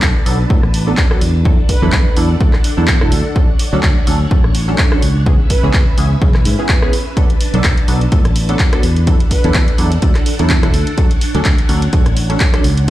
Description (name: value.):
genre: filtered disco house.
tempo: 126 BPM.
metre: 4/4.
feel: swing 56% on 16ths.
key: unclear.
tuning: A4 = 441 Hz.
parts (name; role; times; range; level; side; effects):
funky polysynth comp; accompaniment; 0.0-12.9 s; E3 to A4; -21 LUFS; right 2 dB; chorus, phaser, sidechain pumping, low-pass filter.
phased string machine; sustained chords; 0.0-12.9 s; C#4 to A5; -26 LUFS; equal; ensemble chorus, phaser, sidechain pumping, low-pass filter.
fingered electric bass; bass; 0.0-12.9 s; E1 to A2; -15 LUFS; equal; sidechain pumping, low-pass filter.
electronic kick drum; drums; 0.0-12.5 s; none; -13 LUFS; equal; none.
punchy analog drum machine; drums; 0.0-12.9 s; handclaps, hi-hat, rim click; -21 LUFS; equal; none.
egg shaker; percussion; 0.0-12.9 s; none; barely audible; none; none.
analog synth brass; melody; 1.7-11.0 s; A4 to B4; -26 LUFS; right 3 dB; chorus, sidechain pumping, low-pass filter, ping-pong delay.
room: little or no reverb.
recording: played on a big sound system in a bare room, stone room reverb.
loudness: -11 LUFS.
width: side -15 dB against mid.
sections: 0.0-12.9 A section.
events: none.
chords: 0.0 Bm7; 1.5 E9sus4; 3.4 Dmaj7; 5.3 C#m7; 7.2 Bm7; 9.1 E9sus4; 11.0 Dmaj7.